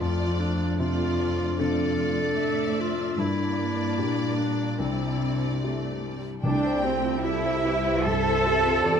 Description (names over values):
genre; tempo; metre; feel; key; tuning
cinematic, emotional film score for orchestra; 75 BPM; 4/4; rubato; C major; A4 = 440 Hz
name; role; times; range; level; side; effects
warm symphonic violin section; melody; 0.0-9.0 s; C5 to G5; -35 LUFS; left 3 dB; none
clear clarinet; second line; 0.0-5.6 s; C4 to A4; -30 LUFS; left 2 dB; none
warm grand piano; accompaniment; 0.0-9.0 s; C2 to C5; -31 LUFS; equal; none
warm symphonic viola section; accompaniment; 0.0-9.0 s; G3 to E5; -34 LUFS; equal; none
concert harp; arpeggios; 0.0-9.0 s; F2 to E5; -32 LUFS; left 9 dB; none
rich symphonic cello section; bass; 0.0-9.0 s; F2 to A4; -28 LUFS; right 4 dB; none
mellow cor anglais; second line; 6.4-9.0 s; C4 to A4; -34 LUFS; right 3 dB; none
dark French horn section; sustained chords; 6.4-9.0 s; C4 to A4; -32 LUFS; left 6 dB; none
rich studio double bass section; bass; 6.4-9.0 s; C2 to E2; -32 LUFS; right 7 dB; none
timpani; percussion; 6.4-7.6 s; C3; -31 LUFS; right 1 dB; none
dark symphonic violin section; second line; 6.5-9.0 s; G4 to D5; -36 LUFS; left 3 dB; none
hollow concert flute; second line; 6.5-9.0 s; C5 to A5; -32 LUFS; left 1 dB; none
room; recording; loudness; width
moderate scoring stage reverb, RT60 1.9 s; close, detailed microphones; -23 LUFS; side -7 dB against mid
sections
0.0-6.4 A section; 6.4-9.0 A section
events
none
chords
0.0 F6; 3.2 Gm; 4.8 Cadd9; 6.4 C